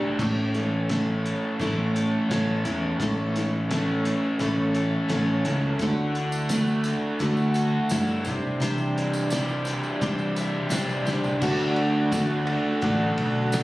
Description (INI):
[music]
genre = folk rock and heartland rock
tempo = 85 BPM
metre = 4/4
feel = straight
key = D major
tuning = A4 = 441 Hz
[part]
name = picked steel-string acoustic guitar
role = accompaniment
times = 0.0-13.6 s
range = A2 to C5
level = -26 LUFS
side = equal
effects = none
[part]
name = raw garage guitar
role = riff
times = 0.0-13.6 s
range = A2 to A4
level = -30 LUFS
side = equal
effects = overdrive
[part]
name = cloth-damped thuddy drum kit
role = drums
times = 0.0-13.6 s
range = crash cymbal, hi-hat, kick drum, ride cymbal, snare drum, toms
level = -33 LUFS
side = equal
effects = none
[part]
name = mellow accordion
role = sustained chords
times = 0.2-13.6 s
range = A3 to A4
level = -34 LUFS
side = right 1 dB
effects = none
[part]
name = fingered electric bass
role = bass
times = 0.2-13.6 s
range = A1 to G2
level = -28 LUFS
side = equal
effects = none
[part]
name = tambourine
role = percussion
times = 5.8-13.6 s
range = none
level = -40 LUFS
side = right 2 dB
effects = none
[sound]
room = light reverb, studio ambience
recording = recorded on a phone in the room, studio reverb, compression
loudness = -22 LUFS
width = side -18 dB against mid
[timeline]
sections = 0.2-11.4 A section; 11.4-13.6 B section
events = break 0.0; drum fill 0.0, 11.1-11.4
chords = 0.2 A; 5.8 Dadd9; 8.3 Cadd9; 11.4 D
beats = | 0.19 0.89 1.59 2.29 | 3.00 3.70 4.40 5.10 | 5.80 6.50 7.21 7.91 | 8.61 9.31 10.02 10.72 | 11.42 12.13 12.83 13.54